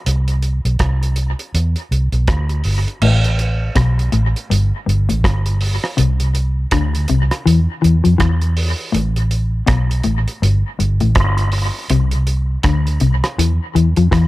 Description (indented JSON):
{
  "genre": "roots reggae",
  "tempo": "81 BPM",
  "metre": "4/4",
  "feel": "swing 59% on 16ths",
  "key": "A minor",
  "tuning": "A4 = 440 Hz",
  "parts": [
    { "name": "vintage muted fingered electric bass", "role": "bass", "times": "0.1-14.3 s", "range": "G1 to F2", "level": "-16 LUFS", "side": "equal", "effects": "none" },
    { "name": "cloth-damped thuddy drum kit", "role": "drums", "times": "0.1-14.3 s", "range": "crash cymbal, hi-hat, kick drum, rim click", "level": "-20 LUFS", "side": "right 1 dB", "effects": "dub echo" },
    { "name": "mellow electric guitar", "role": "riff", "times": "3.0-14.3 s", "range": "G2 to F3", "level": "-17 LUFS", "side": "left 4 dB", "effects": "none" }
  ],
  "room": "light reverb, small room ambience",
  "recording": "none",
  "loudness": "-14 LUFS",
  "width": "side -18 dB against mid",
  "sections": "0.0-3.0 A section; 3.0-14.3 B section",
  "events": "none",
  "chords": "0.0 N.C.; 1.5 Em; 3.0 Asus2; 4.5 Gsus2; 6.0 Csus2; 7.5 N.C.; 8.9 Asus2; 10.4 Gsus2; 11.9 Csus2; 13.4 N.C."
}